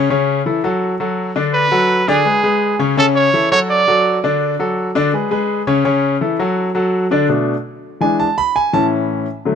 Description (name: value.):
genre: latin.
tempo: 167 BPM.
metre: 4/4.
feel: straight.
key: A major.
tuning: A4 = 439 Hz.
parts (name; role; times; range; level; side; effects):
bright grand piano; accompaniment; 0.0-9.6 s; A2 to B5; -15 LUFS; left 2 dB; none.
clear trumpet; melody; 1.5-4.2 s; G#4 to D5; -14 LUFS; right 3 dB; none.
room: light reverb.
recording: close, detailed microphones.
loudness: -14 LUFS.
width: side -7 dB against mid.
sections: 0.0-7.3 A section; 7.3-9.6 B section.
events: grand piano solo 7.3-9.6.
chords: 0.1 A; 0.8 D; 2.3 G#madd11; 3.0 A; 3.7 D; 5.1 G#madd11; 5.9 A; 6.6 D; 7.3 Bm7; 8.0 E7; 8.7 A.